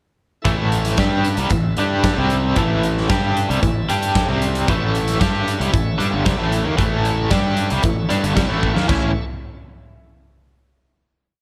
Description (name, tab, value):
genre	classic rock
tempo	114 BPM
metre	4/4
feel	straight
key	A major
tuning	A4 = 441 Hz
part	bright tonewheel organ	sustained chords	0.4-9.3 s	E4 to E5	-34 LUFS	equal	none
part	overdriven electric guitar	riff	0.4-9.1 s	G2 to G4	-22 LUFS	equal	tremolo
part	fuzz fingered electric bass	bass	0.5-9.1 s	G1 to G2	-25 LUFS	equal	overdrive
part	big rock drum kit	drums	0.5-9.0 s	crash cymbal, hi-hat, kick drum, snare drum, toms	-24 LUFS	equal	none
room	studio ambience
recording	none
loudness	-19 LUFS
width	mono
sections	0.5-8.9 riff; 8.9-11.0 final chord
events	drum fill 8.6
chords	0.5 A